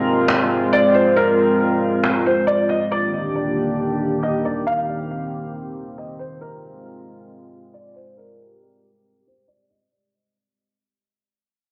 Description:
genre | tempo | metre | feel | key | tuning
hip hop, atmospheric cloud-rap | 137 BPM | 4/4 | half-time | unclear | A4 = 437 Hz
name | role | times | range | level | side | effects
felt-muted upright piano | melody | 0.0-9.9 s | Bb4 to F5 | -22 LUFS | equal | analog chorus, tape echo
warbly tape-like pad | sustained chords | 0.0-9.9 s | Eb3 to G4 | -24 LUFS | equal | chorus, built-in reverb
cajon | drums | 0.3-2.7 s | none | -24 LUFS | equal | none
room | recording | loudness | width
wet plate reverb, RT60 1.7 s, small room ambience | dreamy mix soaked in reverb, low-pass filter | -19 LUFS | mono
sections
0.0-9.9 A section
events
break 0.0-2.9; fade-out 0.0-9.9; filter sweep 0.0-9.9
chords
0.0 Ab69; 2.9 Ebmaj7; 6.4 Ab69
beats
0.28 0.72 | 1.16 1.60 2.04 2.47 | 2.91 3.35 3.79 4.22 | 4.66 5.10 5.54 5.98 | 6.42 6.85 7.29 7.73 | 8.17 8.61 9.04 9.48

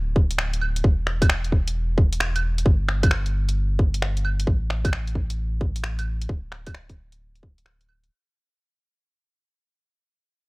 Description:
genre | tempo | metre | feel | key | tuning
future garage | 132 BPM | 4/4 | swing 65% on 16ths | unclear | A4 = 440 Hz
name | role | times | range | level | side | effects
soft dub sub bass | bass | 0.0-8.1 s | D1 to A1 | -25 LUFS | equal | tube saturation, sidechain pumping
electronic kick drum | drums | 0.2-7.5 s | none | -19 LUFS | equal | none
garage drum kit | drums | 0.3-8.1 s | claves, finger snaps, hi-hat | -27 LUFS | right 1 dB | none
room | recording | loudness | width
digital ambience | dry, gritty hardware recording | -21 LUFS | side -26 dB against mid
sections
0.0-8.1 A section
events
fade-out 3.3-8.1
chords
none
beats
0.39 | 0.84 1.30 1.75 2.21 | 2.66 3.11 3.57 4.02 | 4.48 4.93 5.39 5.84 | 6.30 6.75 7.21 7.66

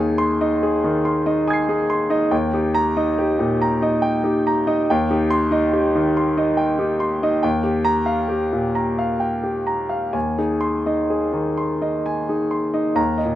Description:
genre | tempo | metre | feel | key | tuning
neoclassical minimalist piano | 62-72 BPM | 3/4 | rubato | unclear | A4 = 440 Hz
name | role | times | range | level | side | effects
warm concert grand piano | solo | 0.0-13.4 s | Eb2 to C7 | -18 LUFS | equal | slapback echo
room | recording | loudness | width
little or no reverb | recorded outdoors, with no room sound, nothing above 10.9 kHz | -18 LUFS | side -13 dB against mid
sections
0.0-13.0 A section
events
none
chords
0.0 Ab/Eb; 2.3 Eb; 4.9 Cm/Eb; 7.4 Gm7/Eb; 10.1 Ab/Eb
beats
0.62 1.47 | 2.32 3.17 4.03 | 4.88 5.73 6.58 | 7.44 8.31 9.21 | 10.14 11.11 12.05 | 12.98

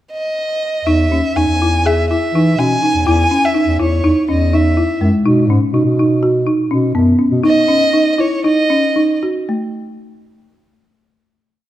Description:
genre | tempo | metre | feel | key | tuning
contemporary instrumental, chamber music in an uneven meter | 246 BPM (eighths) | 9/8 | straight | B major | A4 = 441 Hz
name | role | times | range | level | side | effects
dark violin | melody | 0.1-9.2 s | C#5 to G#5 | -17 LUFS | right 1 dB | none
mellow bass clarinet | bass | 0.8-7.4 s | D#2 to E3 | -17 LUFS | equal | none
folk marimba with medium hard mallets | arpeggios | 0.9-9.7 s | G#3 to G#4 | -14 LUFS | equal | none
room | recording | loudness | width
moderate recital hall reverb, RT60 1.6 s | none | -12 LUFS | side -13 dB against mid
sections
0.0-0.9 pickup bar; 0.9-9.7 A section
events
slowing down 5.7-9.7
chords
0.0 N.C.; 0.9 Emaj7; 5.3 Badd9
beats
0.12 0.37 0.61 | 0.86 1.11 1.36 1.61 1.86 2.10 2.35 2.59 2.83 | 3.07 3.32 3.56 3.80 4.04 4.29 4.53 4.77 5.01 | 5.25 5.49 5.74 5.98 6.22 6.47 6.71 6.96 7.20 | 7.45 7.70 7.94 8.19 8.45 8.70 8.96 9.22 9.49

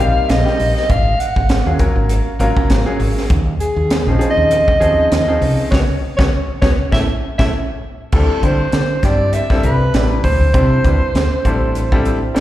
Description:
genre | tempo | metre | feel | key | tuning
electric jazz fusion | 100 BPM | 4/4 | swing 56% on 16ths | unclear | A4 = 440 Hz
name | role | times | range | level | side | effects
breathy soprano saxophone | melody | 0.0-12.4 s | Ab4 to Gb5 | -19 LUFS | equal | slapback echo
clear baby grand piano | accompaniment | 0.0-12.4 s | F3 to D5 | -21 LUFS | left 1 dB | slapback echo
woody fretless electric bass | bass | 0.0-12.3 s | Ab1 to D3 | -17 LUFS | equal | none
crisp fusion drum kit | drums | 0.0-12.4 s | crash cymbal, hi-hat, kick drum, snare drum | -18 LUFS | equal | none
room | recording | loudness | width
light reverb, small room ambience | live gig heard through the venue's PA, recital hall reverb | -13 LUFS | side -14 dB against mid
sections
0.0-8.1 A section; 8.1-12.4 B section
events
band accent 5.7-8.1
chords
0.0 Bbsus4; 0.9 Ab13sus4; 3.3 Eb13sus4; 5.7 Db7sus4; 6.9 A; 8.1 D9sus4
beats
0.29 | 0.89 1.50 2.10 2.70 | 3.30 3.90 4.51 5.11 | 5.71 6.32 6.92 7.52 | 8.12 8.73 9.33 9.94 | 10.54 11.15 11.75 12.36

